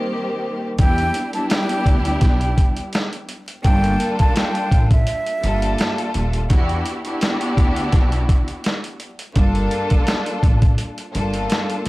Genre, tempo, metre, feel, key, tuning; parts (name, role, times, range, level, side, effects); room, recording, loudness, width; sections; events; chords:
hip hop, boom-bap hip-hop; 84 BPM; 4/4; swing 54% on 16ths; E minor; A4 = 440 Hz
warm studio string section; accompaniment; 0.0-11.9 s; Eb3 to A4; -23 LUFS; equal
breathy concert flute; melody; 0.8-5.9 s; E5 to A5; -25 LUFS; right 1 dB; tape echo
upright bass; bass; 0.8-11.9 s; D#1 to E2; -22 LUFS; equal; transformer saturation
boom bap sampler-style drum kit; drums; 0.8-11.9 s; hi-hat, kick drum, snare drum; -18 LUFS; equal
small room ambience; dry, gritty hardware recording, vinyl crackle; -16 LUFS; side -20 dB against mid
0.8-11.9 A section
break 0.0-0.8
0.0 Cm7; 0.8 Em7; 3.6 Gm9; 6.5 Em9; 9.4 Gm9